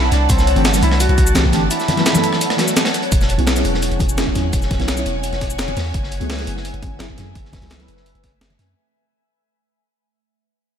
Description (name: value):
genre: liquid drum and bass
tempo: 170 BPM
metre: 4/4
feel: straight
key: E major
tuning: A4 = 440 Hz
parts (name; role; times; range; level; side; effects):
- breathy tenor saxophone; melody; 0.0-2.7 s; C4 to F#4; -24 LUFS; left 1 dB; ping-pong delay
- deep mellow chord stab; accompaniment; 0.0-8.8 s; E3 to C#5; -22 LUFS; equal; chorus, phaser, ping-pong delay
- ethereal airy pad; sustained chords; 0.0-8.7 s; A3 to A5; -24 LUFS; right 1 dB; ensemble chorus, built-in reverb, phaser, sidechain pumping
- long sustained 808-style bass; bass; 0.0-8.8 s; E1 to F#2; -20 LUFS; equal; tube saturation
- breakbeat sampler-style drum kit; drums; 0.1-8.7 s; hi-hat, rim click, shaker, snare drum; -22 LUFS; equal; none
- crunchy breakbeat drum kit; drums; 0.1-8.7 s; hi-hat, snare drum; -26 LUFS; equal; high-pass filter on hats, high-pass filter on snare, high-pass filter on room
- electronic kick drum; drums; 0.3-8.3 s; none; -20 LUFS; equal; none
- congas; percussion; 1.9-8.6 s; none; -26 LUFS; left 2 dB; none
room: moderate lush hall reverb, RT60 2.0 s, studio reverb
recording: dreamy mix soaked in reverb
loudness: -15 LUFS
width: side -8 dB against mid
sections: 0.0-3.1 A section; 3.1-8.8 B section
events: drop 0.0-3.1; break 1.7-3.1; fade-out 3.1-8.8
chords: 0.1 C69; 1.7 B7sus4; 3.1 E69; 5.9 F#m11